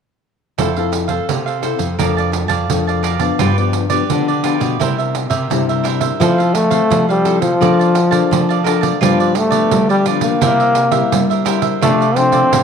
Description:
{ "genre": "samba and choro", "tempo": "85 BPM", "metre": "4/4", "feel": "straight", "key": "F major", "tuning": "A4 = 440 Hz", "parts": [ { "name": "cavaquinho", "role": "accompaniment", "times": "0.6-12.6 s", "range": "D4 to A5", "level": "-21 LUFS", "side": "right 10 dB", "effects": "none" }, { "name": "nylon-string guitar", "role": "accompaniment", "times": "0.6-12.6 s", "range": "G2 to A4", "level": "-20 LUFS", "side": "left 12 dB", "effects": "none" }, { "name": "nylon-string guitar", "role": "bass", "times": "0.6-12.6 s", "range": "F2 to G3", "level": "-20 LUFS", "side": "equal", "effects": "none" }, { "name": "pandeiro", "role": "percussion", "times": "0.6-12.6 s", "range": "none", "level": "-21 LUFS", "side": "right 10 dB", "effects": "none" }, { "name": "clear trombone", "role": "melody", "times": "6.2-12.6 s", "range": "F3 to C4", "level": "-15 LUFS", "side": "left 1 dB", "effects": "none" } ], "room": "light reverb, studio reverb", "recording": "1960s-style stereo with parts hard left and right", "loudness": "-13 LUFS", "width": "side -6 dB against mid", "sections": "0.6-6.2 A section; 6.2-12.6 B section", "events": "none", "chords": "0.6 Fmaj7; 2.0 Bbmaj7/F; 3.4 G7; 4.8 C7; 6.2 Fmaj7; 7.6 Bbmaj7/F; 9.0 G7; 10.4 C7; 11.8 F6/C" }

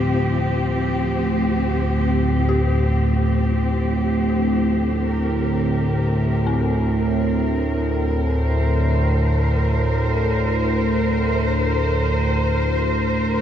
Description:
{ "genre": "dark ambient drone", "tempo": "free time", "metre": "none", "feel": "none", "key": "unclear", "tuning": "A4 = 438 Hz", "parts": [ { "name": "rich studio cello section", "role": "sustained chords", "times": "0.0-13.4 s", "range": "F3 to C5", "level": "-23 LUFS", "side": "left 1 dB", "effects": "shimmer reverb" }, { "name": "dark detuned synth bell", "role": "arpeggios", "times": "0.0-13.4 s", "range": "C4 to G4", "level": "-34 LUFS", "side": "left 4 dB", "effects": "none" }, { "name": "analog drone", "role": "drone", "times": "0.0-13.4 s", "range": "D2 to A2", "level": "-19 LUFS", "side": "equal", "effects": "chorus, phaser" } ], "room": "wet cathedral reverb, RT60 5.3 s", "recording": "in a vast, echoing space, nothing above 8.0 kHz", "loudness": "-18 LUFS", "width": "side -9 dB against mid", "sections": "0.0-13.4 A section", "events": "none", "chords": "0.0 F5; 5.0 Bb" }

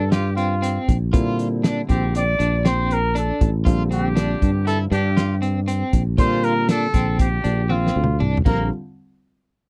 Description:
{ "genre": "progressive instrumental, band music in an uneven meter", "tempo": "119 BPM", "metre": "5/4", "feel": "straight", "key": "Bb lydian", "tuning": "A4 = 437 Hz", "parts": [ { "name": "warm trumpet", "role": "melody", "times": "0.0-8.7 s", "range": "F4 to D5", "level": "-27 LUFS", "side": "equal", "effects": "none" }, { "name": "dark grand piano", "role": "accompaniment", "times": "0.0-8.7 s", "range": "D3 to F4", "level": "-33 LUFS", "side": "equal", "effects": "none" }, { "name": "electric guitar at the edge of break-up", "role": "arpeggios", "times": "0.0-8.7 s", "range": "Bb3 to F4", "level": "-30 LUFS", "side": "equal", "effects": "tremolo" }, { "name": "sustaining fretless electric bass", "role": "bass", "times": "0.0-8.7 s", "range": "A1 to Bb2", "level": "-23 LUFS", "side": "equal", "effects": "none" }, { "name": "warm soul drum kit", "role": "drums", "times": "0.1-8.6 s", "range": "crash cymbal, hi-hat, kick drum, snare drum, toms", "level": "-23 LUFS", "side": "equal", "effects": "none" } ], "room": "little or no reverb", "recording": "none", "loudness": "-20 LUFS", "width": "mono", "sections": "0.0-8.7 A section", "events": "drum fill 7.7-8.7", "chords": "0.0 Bb; 8.7 N.C." }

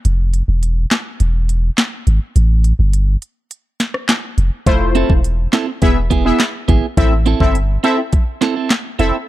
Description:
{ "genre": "dancehall", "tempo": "104 BPM", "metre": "4/4", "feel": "straight", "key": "unclear", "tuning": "A4 = 440 Hz", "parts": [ { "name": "punchy sub bass", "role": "bass", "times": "0.1-9.1 s", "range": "E1 to A1", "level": "-14 LUFS", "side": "equal", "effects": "none" }, { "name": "island pop drum kit", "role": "drums", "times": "0.1-9.1 s", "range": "handclaps, hi-hat, kick drum, rim click, snare drum", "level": "-16 LUFS", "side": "equal", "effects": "overdrive" }, { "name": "synth brass stab", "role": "accompaniment", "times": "4.7-9.2 s", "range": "A3 to E5", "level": "-18 LUFS", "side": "left 2 dB", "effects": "chorus" }, { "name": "clean electric guitar", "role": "arpeggios", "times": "5.0-9.2 s", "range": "B3 to A4", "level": "-19 LUFS", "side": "right 7 dB", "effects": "none" } ], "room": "digital ambience", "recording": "dark, warm production", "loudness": "-13 LUFS", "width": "side -15 dB against mid", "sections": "0.0-9.3 A section", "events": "break 0.0-4.7", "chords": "0.1 N.C.; 2.4 Fadd9; 4.7 Fmaj7; 5.8 E; 7.0 Am" }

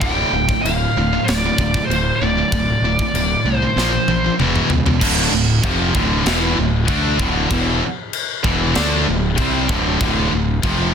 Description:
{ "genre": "heavy metal", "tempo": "96 BPM", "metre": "4/4", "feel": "straight", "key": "D minor", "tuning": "A4 = 440 Hz", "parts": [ { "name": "high-gain lead guitar", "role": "melody", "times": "0.0-4.3 s", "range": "C5 to G5", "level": "-20 LUFS", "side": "equal", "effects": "distortion" }, { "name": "heavy high-gain guitar", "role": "riff", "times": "0.0-10.9 s", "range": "D2 to D4", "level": "-22 LUFS", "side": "right 11 dB", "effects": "distortion" }, { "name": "high-gain distorted guitar", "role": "riff", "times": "0.0-10.9 s", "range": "D2 to D4", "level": "-22 LUFS", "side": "left 12 dB", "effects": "distortion" }, { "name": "fuzz fingered electric bass", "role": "bass", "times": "0.0-10.9 s", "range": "D1 to D2", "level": "-22 LUFS", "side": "equal", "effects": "overdrive" }, { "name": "tight metal drum kit", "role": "drums", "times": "0.0-10.8 s", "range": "china cymbal, crash cymbal, kick drum, snare drum, toms", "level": "-22 LUFS", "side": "left 1 dB", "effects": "none" }, { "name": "overdriven electric guitar", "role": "riff", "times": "5.0-10.9 s", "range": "D2 to D4", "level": "-24 LUFS", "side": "left 1 dB", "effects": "none" } ], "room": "little or no reverb", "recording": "dense, heavily limited modern master", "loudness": "-15 LUFS", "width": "side -7 dB against mid", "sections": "0.0-5.0 A section; 5.0-10.9 B section", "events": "drum fill 3.8-5.0", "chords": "0.0 D5; 3.8 Bb5; 4.4 E5; 5.0 Dm" }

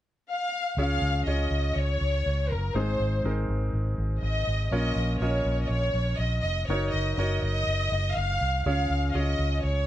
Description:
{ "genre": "pop", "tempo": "122 BPM", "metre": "4/4", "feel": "straight", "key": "Db major", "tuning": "A4 = 445 Hz", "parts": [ { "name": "warm studio violin section", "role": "melody", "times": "0.3-9.9 s", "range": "Bb4 to F5", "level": "-29 LUFS", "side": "equal", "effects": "none" }, { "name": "clear concert grand piano", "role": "accompaniment", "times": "0.8-9.9 s", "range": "Ab2 to Eb5", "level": "-32 LUFS", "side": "equal", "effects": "none" }, { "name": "vintage muted fingered electric bass", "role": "bass", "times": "0.8-9.8 s", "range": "F1 to Db2", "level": "-27 LUFS", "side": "equal", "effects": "none" } ], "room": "little or no reverb", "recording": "dry, close 1970s-style studio recording", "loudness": "-24 LUFS", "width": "side -13 dB against mid", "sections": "0.8-9.9 A section", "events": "none", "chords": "0.0 N.C.; 0.8 Db; 2.7 Ab; 4.7 Bbm; 6.7 Gb6; 8.7 Db" }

